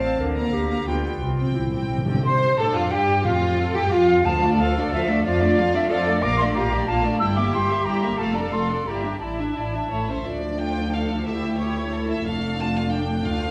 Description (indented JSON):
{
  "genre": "classical",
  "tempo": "180 BPM",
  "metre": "3/4",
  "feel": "straight",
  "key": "F major, D minor from 6.2 s",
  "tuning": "A4 = 445 Hz",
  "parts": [
    { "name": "rich chamber violin section", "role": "melody", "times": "0.0-13.5 s", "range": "F4 to Bb5", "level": "-32 LUFS", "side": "equal", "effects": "none" },
    { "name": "mellow clarinet", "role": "second line", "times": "0.0-2.1 s", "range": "E4 to C5", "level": "-30 LUFS", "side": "equal", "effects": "none" },
    { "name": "rich symphonic violin section", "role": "second line", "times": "0.0-13.5 s", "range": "D4 to G5", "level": "-34 LUFS", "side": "equal", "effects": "none" },
    { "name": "warm symphonic viola section", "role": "accompaniment", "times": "0.0-13.5 s", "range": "F3 to C5", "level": "-29 LUFS", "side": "equal", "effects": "none" },
    { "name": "rich symphonic cello section", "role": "bass", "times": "0.0-13.5 s", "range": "D2 to Bb4", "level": "-31 LUFS", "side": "equal", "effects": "none" },
    { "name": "rich symphonic double bass section", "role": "bass", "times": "0.0-13.5 s", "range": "F1 to C3", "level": "-30 LUFS", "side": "equal", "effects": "none" },
    { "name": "timpani", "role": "percussion", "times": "1.2-4.7 s", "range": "A2 to D3", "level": "-31 LUFS", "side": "equal", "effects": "none" },
    { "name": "silver concert flute", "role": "second line", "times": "2.3-10.1 s", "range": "D5 to E6", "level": "-27 LUFS", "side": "equal", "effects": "none" },
    { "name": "dark French horn section", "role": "sustained chords", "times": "10.3-13.5 s", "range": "A3 to F4", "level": "-30 LUFS", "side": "equal", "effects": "none" }
  ],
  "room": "wet recital hall reverb, RT60 1.4 s",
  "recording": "recorded in a church or concert hall",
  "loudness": "-22 LUFS",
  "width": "mono",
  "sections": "0.0-2.2 A section; 2.2-10.3 A section; 10.3-13.5 B section",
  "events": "timpani fill 1.2-2.2",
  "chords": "0.2 Bb/D; 0.9 G7/D; 1.2 C; 2.2 F; 4.2 Dm; 5.2 Dm/F; 6.2 Bbmaj7; 7.2 Edim/G; 8.2 Dm/F; 8.9 Em7b5/G; 9.2 Asus4; 9.9 A; 10.3 Dm; 11.3 A7/D; 12.3 Dm/F"
}